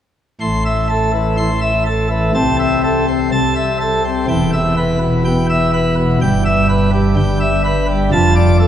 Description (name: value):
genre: classical, organ toccata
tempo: 124 BPM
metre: 4/4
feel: straight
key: A minor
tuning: A4 = 440 Hz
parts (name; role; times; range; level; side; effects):
- pipe organ, plenum; solo; 0.4-8.7 s; E1 to C6; -13 LUFS; equal; none
room: wet church reverb, RT60 3.3 s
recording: heard from further back in the room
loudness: -13 LUFS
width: side -10 dB against mid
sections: 0.4-8.7 A section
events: none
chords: 0.4 Am; 2.3 Am/C; 4.3 Em; 6.2 Em/G; 8.1 Dm/F